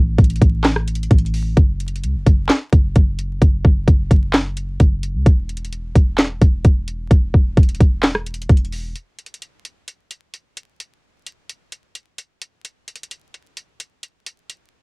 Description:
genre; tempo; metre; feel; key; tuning
hip hop, trap; 130 BPM; 4/4; half-time; unclear; A4 = 436 Hz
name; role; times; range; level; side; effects
warm 808-style bass; bass; 0.0-8.9 s; E1 to C#2; -21 LUFS; equal; none
trap drum kit; drums; 0.2-14.6 s; handclaps, hi-hat, kick drum, rim click, snare drum; -13 LUFS; equal; cassette tape
room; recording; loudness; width
little or no reverb; home recording on cassette, vinyl crackle; -14 LUFS; side -35 dB against mid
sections
0.0-9.0 A section; 9.0-14.8 B section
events
none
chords
none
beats
0.19 0.65 1.11 | 1.57 2.03 2.49 2.96 | 3.42 3.88 4.34 4.80 | 5.26 5.72 6.19 6.65 | 7.11 7.57 8.03 8.49 | 8.96 9.42 9.88 10.34 | 10.80 11.26 11.72 12.19 | 12.65 13.11 13.57 14.03 | 14.49

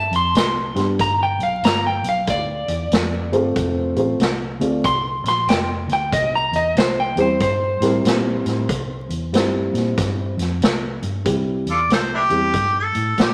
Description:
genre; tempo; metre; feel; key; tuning
electric blues shuffle; 94 BPM; 4/4; swing 64% on 8ths; C mixolydian; A4 = 440 Hz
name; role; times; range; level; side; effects
electric guitar at the edge of break-up; second line; 0.0-9.3 s; C5 to C6; -23 LUFS; equal; spring reverb
vintage muted fingered electric bass; bass; 0.0-13.3 s; F1 to Bb2; -28 LUFS; equal; none
swinging big-band drum kit; drums; 0.1-13.3 s; hi-hat, kick drum, snare drum; -24 LUFS; equal; none
dark concert grand piano; accompaniment; 0.8-12.5 s; G3 to D5; -23 LUFS; equal; none
warm harmonica; melody; 11.7-13.3 s; D4 to D5; -21 LUFS; equal; overdrive
room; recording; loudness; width
moderate large studio reverb, RT60 0.9 s; vinyl crackle; -20 LUFS; mono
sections
0.0-11.3 A section; 11.3-13.3 B section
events
clean electric guitar solo 0.0-11.3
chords
0.0 C5; 1.0 G; 3.6 F; 6.1 C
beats
0.35 | 1.00 1.64 2.28 2.92 | 3.56 4.20 4.84 5.48 | 6.12 6.76 7.41 8.05 | 8.69 9.33 9.97 10.61 | 11.25 11.89 12.54 13.18

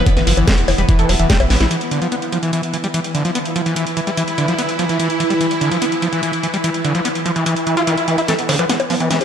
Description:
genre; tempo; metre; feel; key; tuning
psychedelic trance; 146 BPM; 4/4; straight; E phrygian; A4 = 440 Hz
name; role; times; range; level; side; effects
swarming drone; sustained chords; 0.0-9.2 s; E3 to E4; -21 LUFS; right 1 dB; built-in reverb, sidechain pumping
overdriven synth lead; melody; 0.1-1.6, 8.3-9.2 s; B3 to B4; -24 LUFS; right 1 dB; phaser, sidechain pumping, diffuse ambient delay
screaming distorted acid line; riff; 0.1-9.2 s; D3 to F4; -19 LUFS; equal; distortion, chorus, auto-pan, cassette tape, sidechain pumping, diffuse ambient delay
electronic kick drum; drums; 0.1-1.4 s; none; -14 LUFS; equal; none
techno drum kit; drums; 0.1-9.2 s; bongos, hi-hat, snare drum; -23 LUFS; left 1 dB; none
round analog bass; bass; 0.2-1.7 s; E1 to A1; -17 LUFS; equal; none
swell and riser; sound effects; 7.6-9.2 s; none; -25 LUFS; right 1 dB; none
room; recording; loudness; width
moderate lush hall reverb, RT60 2.0 s; dreamy mix soaked in reverb; -15 LUFS; side -8 dB against mid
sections
0.0-1.7 A section; 1.7-8.3 B section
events
drop 0.0-1.7; drum fill 1.5, 8.3-9.2; swell 7.6-8.3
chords
0.0 E5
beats
| 0.06 0.47 0.89 1.30 | 1.71 2.12 2.53 2.94 | 3.35 3.76 4.17 4.58 | 5.00 5.41 5.82 6.23 | 6.64 7.05 7.46 7.87 | 8.28 8.70 9.11

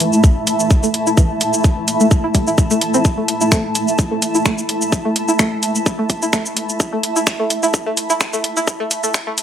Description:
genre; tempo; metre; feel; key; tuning
minimal techno; 128 BPM; 4/4; swing 54% on 16ths; unclear; A4 = 439 Hz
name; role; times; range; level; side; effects
string-like resonator pluck; riff; 0.0-9.3 s; E3 to E4; -20 LUFS; equal; chorus, phaser, sidechain pumping, tape echo
booming analog drum machine; drums; 0.0-9.4 s; finger snaps, hi-hat, shaker; -20 LUFS; equal; none
granular cloud pad; texture; 0.0-9.4 s; A3 to A5; -19 LUFS; equal; built-in reverb, sidechain pumping
electronic kick drum; drums; 0.2-9.2 s; none; -14 LUFS; equal; overdrive
room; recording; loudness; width
light reverb; dry, gritty hardware recording, transformer saturation, high-pass filter; -14 LUFS; side -9 dB against mid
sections
0.0-9.4 A section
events
build-up 0.0-9.4; filter sweep on synth pluck 0.0-9.4; filter sweep 0.0-9.4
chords
0.0 A5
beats
0.24 0.71 | 1.18 1.64 2.11 2.58 | 3.05 3.52 3.99 4.46 | 4.92 5.39 5.86 6.33 | 6.80 7.27 7.74 8.21 | 8.68 9.14

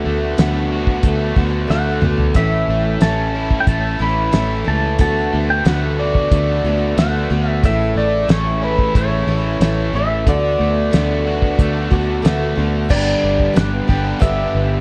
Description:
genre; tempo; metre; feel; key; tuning
folk rock and heartland rock; 91 BPM; 4/4; straight; D major; A4 = 440 Hz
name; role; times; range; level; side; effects
pedal steel guitar; melody; 0.0-14.8 s; B4 to B5; -24 LUFS; equal; none
picked steel-string acoustic guitar; accompaniment; 0.0-14.8 s; G2 to G4; -25 LUFS; equal; none
bright studio string section; sustained chords; 0.0-14.8 s; C#3 to B4; -33 LUFS; equal; none
raw garage guitar; riff; 0.0-14.8 s; G2 to G4; -26 LUFS; equal; overdrive
fingered electric bass; bass; 0.0-14.8 s; G1 to D2; -22 LUFS; equal; none
cloth-damped thuddy drum kit; drums; 0.4-14.4 s; crash cymbal, hi-hat, kick drum, snare drum, toms; -18 LUFS; equal; none
room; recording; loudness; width
light reverb, small room ambience; worn, warbling old tape, cassette tape, warbly pitch drift; -17 LUFS; mono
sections
0.0-12.9 A section; 12.9-14.8 B section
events
drum fill 1.7-2.4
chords
0.0 D6; 2.4 A; 5.0 D6; 7.6 A; 10.3 D6; 12.9 G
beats
0.38 1.04 1.70 | 2.36 3.02 3.68 4.34 | 5.00 5.66 6.32 6.98 | 7.64 8.30 8.96 9.62 | 10.28 10.94 11.59 12.25 | 12.91 13.57 14.22

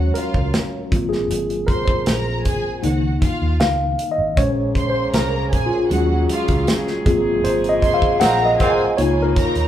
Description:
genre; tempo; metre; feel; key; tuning
lush 1970s-style soul; 78 BPM; 4/4; straight; unclear; A4 = 440 Hz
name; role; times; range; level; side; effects
dark studio violin section; second line; 0.0-9.7 s; F4 to C6; -26 LUFS; right 1 dB; none
mellow tine electric piano; accompaniment; 0.0-9.7 s; Eb3 to Gb5; -20 LUFS; left 1 dB; medium stereo tremolo
vintage muted fingered electric bass; bass; 0.0-9.7 s; Ab1 to Eb2; -23 LUFS; right 1 dB; none
modern studio drum kit; drums; 0.2-9.7 s; hi-hat, kick drum, snare drum; -21 LUFS; equal; none
muted French horn section; sustained chords; 4.4-9.7 s; C3 to Ab4; -26 LUFS; right 3 dB; none
tambourine; percussion; 5.1-8.4 s; none; -39 LUFS; right 6 dB; none
warm horn section; stabs; 8.2-8.8 s; Bb3 to F4; -24 LUFS; right 1 dB; none
room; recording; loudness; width
moderate large studio reverb, RT60 1.4 s; band playing live in one room; -16 LUFS; side -11 dB against mid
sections
0.0-9.7 A section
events
tine electric piano solo 0.0-9.7; band accent 7.5-9.7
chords
0.0 Ebm11 (rootless); 0.9 Ab13; 2.8 Db69; 4.4 Bbm9; 5.9 Ebm11; 7.1 Ab13; 9.0 Db69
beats
0.54 | 1.30 2.07 2.84 3.61 | 4.38 5.14 5.91 6.68 | 7.45 8.22 8.99

